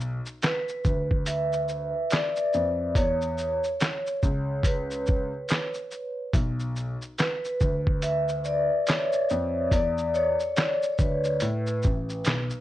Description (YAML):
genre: lo-fi hip hop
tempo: 71 BPM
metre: 4/4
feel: swing 61% on 16ths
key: B minor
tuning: A4 = 440 Hz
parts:
  - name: dark baby grand piano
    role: bass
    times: 0.0-12.5 s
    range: A1 to A2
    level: -30 LUFS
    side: left 1 dB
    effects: none
  - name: lo-fi sampler-style drum kit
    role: drums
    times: 0.0-12.6 s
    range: handclaps, hi-hat, kick drum, shaker, snare drum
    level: -26 LUFS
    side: equal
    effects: none
  - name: vibraphone with soft mallets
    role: accompaniment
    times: 0.4-12.6 s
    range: B4 to E5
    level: -27 LUFS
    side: equal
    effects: none
room: light reverb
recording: cassette tape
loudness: -24 LUFS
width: side -14 dB against mid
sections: 0.0-12.6 A section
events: vibraphone solo 0.0-12.6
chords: 0.0 Bm; 3.0 E5; 6.3 Bmadd9; 11.4 Asus2